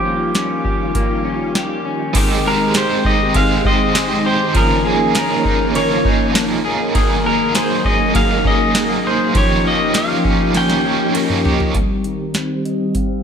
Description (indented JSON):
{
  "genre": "dream pop",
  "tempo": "100 BPM",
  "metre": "4/4",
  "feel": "straight",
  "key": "Ab major",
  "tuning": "A4 = 439 Hz",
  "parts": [
    { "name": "pedal steel guitar", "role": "melody", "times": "0.0-13.2 s", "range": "G4 to G5", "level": "-20 LUFS", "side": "right 1 dB", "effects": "low-pass filter, ping-pong delay" },
    { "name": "ensemble organ-string", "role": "sustained chords", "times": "0.0-13.2 s", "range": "Eb3 to Ab4", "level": "-20 LUFS", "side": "equal", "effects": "ensemble chorus, low-pass filter" },
    { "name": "electric guitar at the edge of break-up", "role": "arpeggios", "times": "0.0-13.2 s", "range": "Eb3 to Ab4", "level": "-22 LUFS", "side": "left 4 dB", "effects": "wide subtle chorus, low-pass filter, ping-pong delay" },
    { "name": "booming analog drum machine", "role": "drums", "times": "0.3-13.1 s", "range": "crash cymbal, hi-hat, kick drum, ride cymbal, snare drum, tambourine, toms", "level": "-19 LUFS", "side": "equal", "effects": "none" },
    { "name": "cranked stack guitar", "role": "accompaniment", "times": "2.1-11.8 s", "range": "Db3 to Db5", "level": "-21 LUFS", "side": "right 6 dB", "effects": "overdrive, tremolo, analog chorus" }
  ],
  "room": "light reverb, digital ambience",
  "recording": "none",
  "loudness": "-14 LUFS",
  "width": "side -7 dB against mid",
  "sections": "0.0-2.2 A section; 2.2-11.8 B section; 11.8-13.2 C section",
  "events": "drum fill 10.6-11.8; filter sweep 11.8-13.2",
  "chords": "0.0 Eb9; 2.2 Abmaj7; 4.6 Db69; 7.0 Gb69; 9.4 Eb9; 11.8 Eb6",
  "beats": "0.35 0.95 1.55 | 2.15 2.75 3.35 3.95 | 4.55 5.15 5.75 6.35 | 6.95 7.55 8.15 8.75 | 9.35 9.95 10.55 11.15 | 11.75 12.35 12.95"
}